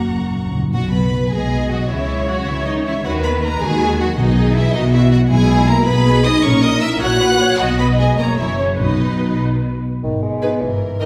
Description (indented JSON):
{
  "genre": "quick classical-period movement for symphony orchestra",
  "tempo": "95-107 BPM (dotted quarters)",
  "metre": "6/8",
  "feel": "rubato",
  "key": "B major",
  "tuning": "A4 = 440 Hz",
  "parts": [
    { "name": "warm chamber violin section", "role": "melody", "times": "0.0-11.1 s", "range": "A#4 to F#6", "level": "-26 LUFS", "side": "equal", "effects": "none" },
    { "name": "warm studio violin section", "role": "second line", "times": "0.0-11.1 s", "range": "C#4 to A#5", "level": "-27 LUFS", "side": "equal", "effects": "none" },
    { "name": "warm studio viola section", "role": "accompaniment", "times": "0.0-11.1 s", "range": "A#3 to D#5", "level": "-26 LUFS", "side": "equal", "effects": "none" },
    { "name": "dark French horn section", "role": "sustained chords", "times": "0.0-9.4 s", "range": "C#3 to F#4", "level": "-25 LUFS", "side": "equal", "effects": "none" },
    { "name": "warm chamber double bass section", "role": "bass", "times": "0.0-11.1 s", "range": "F#1 to D#2", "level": "-22 LUFS", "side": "equal", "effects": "none" },
    { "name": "warm studio cello section", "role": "bass", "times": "0.0-11.1 s", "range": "F#2 to D#3", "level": "-24 LUFS", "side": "equal", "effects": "none" },
    { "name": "timpani", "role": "percussion", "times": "0.0-1.3, 4.2-5.8, 8.8-9.4 s", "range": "F#2 to B2", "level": "-24 LUFS", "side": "equal", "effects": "none" },
    { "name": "mellow bassoon", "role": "accompaniment", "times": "10.0-11.1 s", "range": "D#3 to G#3", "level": "-24 LUFS", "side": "equal", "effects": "none" }
  ],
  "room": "wet recital hall reverb, RT60 1.5 s",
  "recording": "recorded in a church or concert hall",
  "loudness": "-16 LUFS",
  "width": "mono",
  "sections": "0.7-10.0 A section; 10.0-11.1 B section",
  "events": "timpani fill 0.0-0.7",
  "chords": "0.0 F#; 0.7 B; 1.9 C#madd9; 3.0 B/D#; 4.2 B; 6.4 F#/A#; 7.6 B; 8.2 F#5; 8.8 B; 10.0 G#m",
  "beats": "0.14 | 0.74 1.33 | 1.91 2.48 | 3.05 3.62 | 4.18 4.74 | 5.31 5.88 | 6.45 7.02 | 7.60 8.20 | 8.80 9.41 | 10.03 10.62"
}